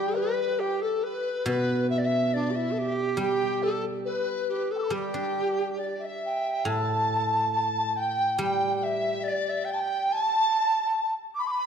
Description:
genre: chinese traditional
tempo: 70 BPM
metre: 2/4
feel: straight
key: G gong mode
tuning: A4 = 440 Hz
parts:
  - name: mellow hollow large dizi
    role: melody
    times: 0.0-11.7 s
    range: D4 to D6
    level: -27 LUFS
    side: right 3 dB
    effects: none
  - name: reedy large dizi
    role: second line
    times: 0.0-11.7 s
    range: A4 to E6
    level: -30 LUFS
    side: left 5 dB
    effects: none
  - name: guzheng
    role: accompaniment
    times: 0.0-11.0 s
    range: A2 to D4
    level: -30 LUFS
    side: equal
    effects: none
room: moderate concert hall reverb, RT60 2.1 s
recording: dark, warm production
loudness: -24 LUFS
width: side -7 dB against mid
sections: 0.0-6.6 A section; 6.6-11.7 B section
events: none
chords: none

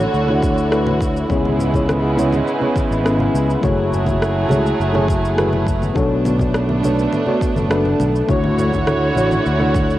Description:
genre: sunset chillout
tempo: 103 BPM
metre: 4/4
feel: straight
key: B dorian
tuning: A4 = 440 Hz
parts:
  - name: mellow FM electric piano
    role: accompaniment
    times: 0.0-10.0 s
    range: A3 to C#5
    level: -20 LUFS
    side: left 1 dB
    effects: chorus, auto-pan, cassette tape, analog delay
  - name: dark chamber string section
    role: sustained chords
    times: 0.0-10.0 s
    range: C#3 to C#5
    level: -20 LUFS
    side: right 1 dB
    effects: cassette tape
  - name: fingered electric bass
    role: bass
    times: 0.0-10.0 s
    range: F#1 to D2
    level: -20 LUFS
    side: equal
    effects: none
  - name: electronic shaker, rim click and congas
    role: drums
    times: 0.0-10.0 s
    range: none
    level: -25 LUFS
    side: left 1 dB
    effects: overdrive, cassette tape
  - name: congas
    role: percussion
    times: 0.3-9.7 s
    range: none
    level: -28 LUFS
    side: left 2 dB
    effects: none
  - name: electronic kick drum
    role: drums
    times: 0.4-9.9 s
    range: none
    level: -22 LUFS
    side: equal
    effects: overdrive, cassette tape
room: light reverb, digital ambience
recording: home recording on cassette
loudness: -15 LUFS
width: side -14 dB against mid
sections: 0.0-10.0 A section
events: none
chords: 0.0 Dmaj9; 1.3 C#m7; 3.6 F#m9; 6.0 Bm7; 8.3 Dmaj9

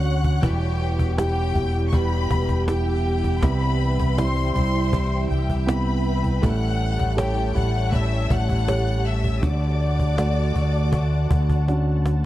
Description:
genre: pop ballad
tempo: 80 BPM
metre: 4/4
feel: straight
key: D major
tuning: A4 = 440 Hz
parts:
  - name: rich studio violin section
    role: melody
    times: 0.0-11.7 s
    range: G4 to F#6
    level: -29 LUFS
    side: left 3 dB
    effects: none
  - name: warm concert grand piano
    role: accompaniment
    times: 0.0-12.3 s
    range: C3 to C#5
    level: -29 LUFS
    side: right 2 dB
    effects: none
  - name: ethereal airy pad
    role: sustained chords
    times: 0.0-12.3 s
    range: E4 to C#6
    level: -32 LUFS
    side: right 2 dB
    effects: ensemble chorus, built-in reverb
  - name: direct-recorded clean electric guitar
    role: arpeggios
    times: 0.0-12.3 s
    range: E2 to F#4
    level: -30 LUFS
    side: left 3 dB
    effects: analog chorus
  - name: fretless electric bass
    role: bass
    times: 0.0-12.3 s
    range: E1 to D2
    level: -22 LUFS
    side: equal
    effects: none
  - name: cajon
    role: drums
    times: 0.2-12.2 s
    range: none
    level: -25 LUFS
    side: equal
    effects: none
room: small room ambience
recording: dark, warm production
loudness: -19 LUFS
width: side -14 dB against mid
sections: 0.0-12.3 A section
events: drum fill 11.7-12.3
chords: 0.4 Em; 3.4 Cmaj7; 6.4 A7; 9.4 Dmaj7

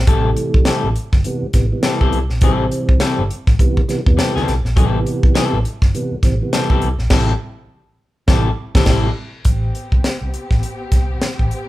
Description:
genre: funk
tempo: 102 BPM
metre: 4/4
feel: swing 60% on 16ths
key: A minor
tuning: A4 = 439 Hz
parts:
  - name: vintage muted fingered electric bass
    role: bass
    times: 0.0-11.5 s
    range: G1 to E2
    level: -20 LUFS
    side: equal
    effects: none
  - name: electric guitar at the edge of break-up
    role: accompaniment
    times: 0.1-9.1 s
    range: G3 to A4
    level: -22 LUFS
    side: left 6 dB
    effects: none
  - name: tonewheel organ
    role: stabs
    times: 0.1-9.1 s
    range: B2 to C4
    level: -21 LUFS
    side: right 2 dB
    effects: overdrive, slow rotary speaker
  - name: tight funk drum kit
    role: drums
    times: 0.1-11.7 s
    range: crash cymbal, hi-hat, kick drum, snare drum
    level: -15 LUFS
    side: equal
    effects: none
  - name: warm studio string section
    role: sustained chords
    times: 9.4-11.7 s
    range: B3 to G4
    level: -30 LUFS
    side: left 1 dB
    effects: none
room: light reverb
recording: band playing live in one room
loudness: -14 LUFS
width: side -16 dB against mid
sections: 0.0-9.4 A section; 9.4-11.7 B section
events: band accent 7.1-9.4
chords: 0.0 Am7

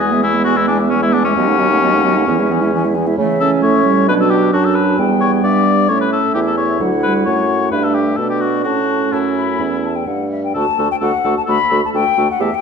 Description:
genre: quick classical-period movement for wind quintet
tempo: 131 BPM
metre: 4/4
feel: straight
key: D major from 3.2 s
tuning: A4 = 439 Hz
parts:
  - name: mellow silver concert flute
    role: melody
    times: 0.0-12.6 s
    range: D5 to B5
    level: -22 LUFS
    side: left 8 dB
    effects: none
  - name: mellow oboe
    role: second line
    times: 0.0-12.5 s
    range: C#4 to D5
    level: -18 LUFS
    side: left 6 dB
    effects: none
  - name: dark French horn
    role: accompaniment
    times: 0.0-12.5 s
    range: E3 to B3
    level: -21 LUFS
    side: left 1 dB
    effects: none
  - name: warm clarinet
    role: accompaniment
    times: 0.0-12.5 s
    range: G#3 to G4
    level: -19 LUFS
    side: right 8 dB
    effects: none
  - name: mellow bassoon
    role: bass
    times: 0.0-12.5 s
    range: D2 to C#3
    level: -19 LUFS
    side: right 3 dB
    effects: none
room: wet recital hall reverb, RT60 1.6 s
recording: dark, warm production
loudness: -13 LUFS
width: side -6 dB against mid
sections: 0.0-10.5 A section; 10.5-12.6 B section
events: none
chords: 0.0 E; 1.4 B7/D#; 2.3 E; 3.2 A/C#; 4.1 Bm; 5.0 Em; 5.9 A; 6.8 D; 7.7 G; 8.7 A; 10.5 D

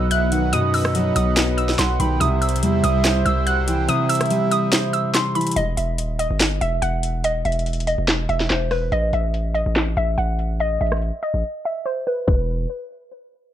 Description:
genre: hip hop, trap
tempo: 143 BPM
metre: 4/4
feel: half-time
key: E harmonic minor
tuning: A4 = 441 Hz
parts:
  - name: warbly dusty pluck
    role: melody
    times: 0.0-12.5 s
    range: B4 to F#6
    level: -24 LUFS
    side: equal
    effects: chorus, low-pass filter, digital delay
  - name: breathy flute-like synth lead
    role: second line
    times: 0.0-5.1 s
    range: D#5 to G5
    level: -26 LUFS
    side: right 8 dB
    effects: chorus, digital delay
  - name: dark baby grand piano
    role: accompaniment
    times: 0.0-5.6 s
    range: B2 to C5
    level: -22 LUFS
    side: left 2 dB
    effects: low-pass filter
  - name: warm analog pad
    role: sustained chords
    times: 0.0-5.5 s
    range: C3 to F#5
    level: -29 LUFS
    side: equal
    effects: chorus, tremolo
  - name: distorted 808-style bass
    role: bass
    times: 0.0-12.7 s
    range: D#1 to F#2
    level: -22 LUFS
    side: equal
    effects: distortion
  - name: trap drum kit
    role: drums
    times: 0.1-12.4 s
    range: crash cymbal, handclaps, hi-hat, kick drum, rim click, snare drum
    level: -22 LUFS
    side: equal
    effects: none
room: little or no reverb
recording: dark, warm production, low-pass filter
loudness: -18 LUFS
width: side -11 dB against mid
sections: 0.0-5.6 A section; 5.6-12.3 B section; 12.3-13.5 C section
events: kick muted 3.9-5.6; filter sweep 5.6-12.3; break 11.4-12.3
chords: 0.0 B; 2.2 C; 5.6 N.C.; 8.9 A5; 12.3 E5

